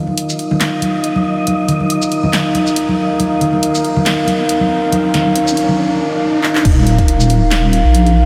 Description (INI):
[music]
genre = deep dubstep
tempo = 139 BPM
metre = 4/4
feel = swing 55% on 16ths, half-time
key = unclear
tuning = A4 = 440 Hz
[part]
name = dark analog pad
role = sustained chords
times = 0.0-8.3 s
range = Eb4 to F5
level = -18 LUFS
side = equal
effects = chorus
[part]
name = riser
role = sound effects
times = 2.8-6.7 s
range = none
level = -28 LUFS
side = equal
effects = none
[part]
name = wind-like tuned noise texture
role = texture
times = 0.2-5.8 s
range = Eb5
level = -28 LUFS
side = equal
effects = built-in reverb
[part]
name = congas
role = percussion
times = 0.1-5.8 s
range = none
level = -21 LUFS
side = equal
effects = dub echo
[part]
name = deep house drum kit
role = drums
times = 0.2-8.1 s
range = crash cymbal, handclaps, hi-hat, shaker, snare drum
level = -24 LUFS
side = equal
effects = none
[part]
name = deep soft wobble bass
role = bass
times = 6.7-8.3 s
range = Eb1 to Bb1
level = -14 LUFS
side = equal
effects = chorus
[part]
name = electronic kick drum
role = drums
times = 6.7-7.1 s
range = none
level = -15 LUFS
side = equal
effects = none
[sound]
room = moderate huge ambient reverb, RT60 6.3 s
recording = dreamy mix soaked in reverb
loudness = -14 LUFS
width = mono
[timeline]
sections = 0.0-6.7 A section; 6.7-8.3 B section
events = build-up 0.0-6.7; riser 2.8-6.7; drum fill 6.4; drop 6.7-8.3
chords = 0.0 Eb5